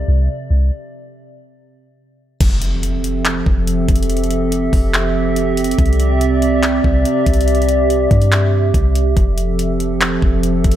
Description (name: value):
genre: hip hop, atmospheric cloud-rap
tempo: 142 BPM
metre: 4/4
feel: half-time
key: F major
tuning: A4 = 441 Hz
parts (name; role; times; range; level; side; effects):
- warbly tape-like pad; sustained chords; 0.0-10.8 s; C3 to E5; -18 LUFS; right 1 dB; chorus, built-in reverb, sidechain pumping, low-pass filter
- soft 808-style bass; bass; 0.0-10.8 s; F1 to G2; -17 LUFS; equal; none
- smooth R&B drum kit; drums; 2.4-10.8 s; crash cymbal, handclaps, hi-hat, kick drum; -17 LUFS; equal; none
- impact; sound effects; 2.4-4.1 s; none; -29 LUFS; equal; none
room: light reverb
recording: none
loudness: -13 LUFS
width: side -12 dB against mid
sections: 0.0-2.4 A section; 2.4-10.8 B section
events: filter sweep on ambient pad 0.0-2.4; stop 0.7-2.4; impact 2.4-4.1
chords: 0.0 Cadd9; 2.4 Fmaj7; 5.8 Cadd9; 9.2 Fmaj7